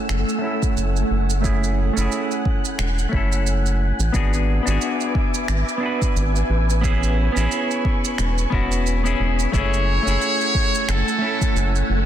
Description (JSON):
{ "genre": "sunset chillout", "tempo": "89 BPM", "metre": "4/4", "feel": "swing 57% on 16ths", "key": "F# minor", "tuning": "A4 = 441 Hz", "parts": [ { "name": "semi-hollow electric guitar", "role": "accompaniment", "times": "0.0-12.1 s", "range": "A3 to B4", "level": "-24 LUFS", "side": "moving between left 6 dB and right 6 dB", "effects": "auto-pan, low-pass filter, tape echo" }, { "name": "soft string machine", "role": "sustained chords", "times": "0.0-12.1 s", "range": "A3 to F#6", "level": "-27 LUFS", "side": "right 1 dB", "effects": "ensemble chorus" }, { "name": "round analog bass", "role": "bass", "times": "0.1-12.1 s", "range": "E1 to A1", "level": "-20 LUFS", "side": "equal", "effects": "none" }, { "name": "electronic finger snaps and shaker", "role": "drums", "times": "0.1-11.9 s", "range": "none", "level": "-30 LUFS", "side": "right 5 dB", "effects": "soft clipping on snare" }, { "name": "electronic kick drum", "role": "drums", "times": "0.6-11.5 s", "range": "none", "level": "-22 LUFS", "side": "equal", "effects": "none" }, { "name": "trumpet with metal mute", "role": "melody", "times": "9.5-11.9 s", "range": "A4 to C#5", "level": "-22 LUFS", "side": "right 1 dB", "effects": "tape echo" } ], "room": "light reverb, digital ambience", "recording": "dense, heavily limited modern master", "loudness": "-18 LUFS", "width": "side -10 dB against mid", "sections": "0.0-12.1 A section", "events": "filter sweep on clean electric guitar 0.0-12.1", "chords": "0.0 F#m9; 4.1 E7/G#; 6.8 Amaj9; 9.5 F#m9" }